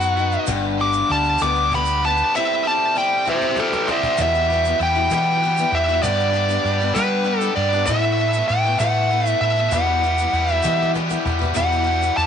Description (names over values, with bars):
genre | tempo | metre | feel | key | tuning
folk rock and heartland rock | 65 BPM (dotted quarters) | 6/8 | straight | E minor | A4 = 440 Hz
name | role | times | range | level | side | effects
smooth overdriven lead guitar | melody | 0.0-12.3 s | A4 to D6 | -19 LUFS | right 1 dB | none
picked swing-style acoustic guitar | accompaniment | 0.0-12.3 s | E2 to G4 | -26 LUFS | left 11 dB | none
biting overdriven guitar | riff | 0.0-12.3 s | E2 to A4 | -25 LUFS | equal | spring reverb
fingered electric bass | bass | 0.0-12.3 s | G1 to G3 | -24 LUFS | right 1 dB | none
tube shaker | percussion | 0.0-12.3 s | none | -36 LUFS | right 16 dB | none
cajon | drums | 0.2-12.3 s | none | -32 LUFS | right 1 dB | none
room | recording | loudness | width
light reverb | 1960s-style stereo with parts hard left and right, nothing above 10.6 kHz | -17 LUFS | side -8 dB against mid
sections
0.0-4.2 A section; 4.2-12.3 B section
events
lead electric guitar solo 0.0-4.2; drum fill 3.3-4.2, 10.6-11.6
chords
0.5 G; 2.3 Am7; 4.2 Emadd9; 6.0 G; 7.9 Asus2; 9.7 Emadd9